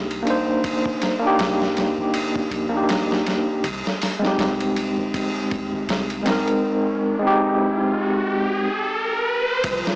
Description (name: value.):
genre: trip hop.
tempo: 80 BPM.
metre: 4/4.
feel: swing 57% on 16ths.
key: unclear.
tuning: A4 = 437 Hz.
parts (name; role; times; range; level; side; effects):
overdriven tine electric piano; accompaniment; 0.0-8.7 s; Ab3 to C5; -20 LUFS; equal; tremolo, tape echo.
soft 808-style bass; bass; 0.0-9.8 s; G1 to Eb2; -38 LUFS; equal; tube saturation.
dusty soul sampler-style drum kit; drums; 0.1-10.0 s; hi-hat, kick drum, ride cymbal, snare drum; -25 LUFS; equal; overdrive.
riser; sound effects; 6.2-9.6 s; none; -25 LUFS; equal; none.
dark analog pad; sustained chords; 9.6-10.0 s; F3 to F4; -29 LUFS; equal; wide subtle chorus.
room: moderate echo chamber reverb, RT60 2.3 s.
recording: blown-out, overdriven recording, vinyl crackle, overdrive, small speaker sound.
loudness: -19 LUFS.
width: side -25 dB against mid.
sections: 0.0-9.6 A section.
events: riser 6.7-9.6.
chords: 0.0 Cm9; 3.6 Abmaj9/G.